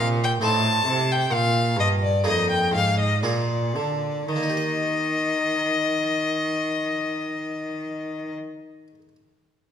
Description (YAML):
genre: classical, baroque-style sonata movement with continuo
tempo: 55-70 BPM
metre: 3/4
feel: straight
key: Eb major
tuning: A4 = 441 Hz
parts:
  - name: rich violin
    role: melody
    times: 0.0-8.3 s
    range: D5 to A5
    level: -24 LUFS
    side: left 3 dB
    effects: none
  - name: harpsichord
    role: accompaniment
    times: 0.0-9.2 s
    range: F2 to Eb5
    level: -28 LUFS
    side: right 2 dB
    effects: none
  - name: warm cello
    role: bass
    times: 0.0-8.3 s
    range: F2 to Eb3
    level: -25 LUFS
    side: right 1 dB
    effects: none
room: wet recital hall reverb, RT60 1.5 s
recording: minimal, uncompressed stereo recording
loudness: -21 LUFS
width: side -8 dB against mid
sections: 0.0-4.3 A section; 4.3-7.6 B section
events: slowing down 0.0-4.3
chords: 0.4 F7/A; 1.3 Bb7sus4; 3.2 Bb7; 4.3 Eb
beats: 0.42 | 1.31 2.24 3.23 | 4.30 5.39 6.48